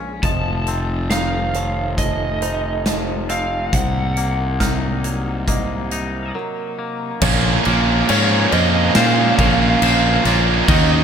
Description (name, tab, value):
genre	post-rock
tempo	69 BPM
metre	4/4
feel	straight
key	Bb minor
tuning	A4 = 440 Hz
part	dark chamber string section	sustained chords	0.0-11.0 s	C3 to Ab4	-30 LUFS	right 1 dB	none
part	felt-muted upright piano	arpeggios	0.0-10.3 s	Ab4 to F6	-32 LUFS	right 6 dB	analog delay
part	twangy electric guitar	arpeggios	0.0-11.0 s	Bb2 to C5	-28 LUFS	left 6 dB	analog delay
part	fuzz fingered electric bass	bass	0.0-11.0 s	F1 to Bb2	-20 LUFS	equal	overdrive
part	lead guitar through a small cranked amp	melody	0.2-11.0 s	Db5 to A5	-23 LUFS	right 2 dB	overdrive, analog delay
part	huge arena drum kit	drums	0.2-10.9 s	crash cymbal, hi-hat, kick drum, snare drum	-22 LUFS	left 1 dB	none
part	distorted electric guitar	riff	7.2-11.0 s	Bb2 to Eb4	-21 LUFS	left 14 dB	overdrive
part	tight distorted guitar	riff	7.2-11.0 s	Bb2 to Gb4	-18 LUFS	right 13 dB	distortion
room	light reverb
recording	none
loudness	-15 LUFS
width	side -7 dB against mid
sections	0.0-7.2 A section; 7.2-11.0 B section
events	none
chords	0.2 F7; 3.7 Cm7b5; 7.2 Bbmadd9